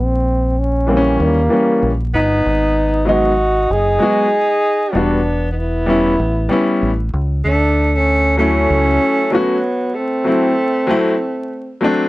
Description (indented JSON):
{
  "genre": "hip hop, jazz-hop",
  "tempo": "96 BPM",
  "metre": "4/4",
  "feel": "swing 59% on 16ths",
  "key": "unclear",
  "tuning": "A4 = 440 Hz",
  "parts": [
    { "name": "mellow trombone", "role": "melody", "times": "0.0-11.8 s", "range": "A#3 to G#4", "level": "-17 LUFS", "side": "equal", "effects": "none" },
    { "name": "deep dub fingered electric bass", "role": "bass", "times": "0.0-9.0 s", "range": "E1 to D#2", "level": "-18 LUFS", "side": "equal", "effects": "none" },
    { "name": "warm grand piano", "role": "accompaniment", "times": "0.9-12.1 s", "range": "E3 to F#4", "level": "-16 LUFS", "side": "left 1 dB", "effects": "none" },
    { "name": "warm tenor saxophone", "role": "second line", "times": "1.2-11.8 s", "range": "F#3 to D#4", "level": "-21 LUFS", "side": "right 2 dB", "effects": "none" }
  ],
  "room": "light reverb",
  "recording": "dry, gritty hardware recording, vinyl crackle",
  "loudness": "-13 LUFS",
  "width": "side -18 dB against mid",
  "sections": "0.0-12.1 A section",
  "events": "break 9.9-12.1",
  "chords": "0.0 A#dim; 1.2 D#7b9; 2.4 G#m7; 4.9 Em7; 6.2 A9; 7.4 Dmaj7; 9.9 D9"
}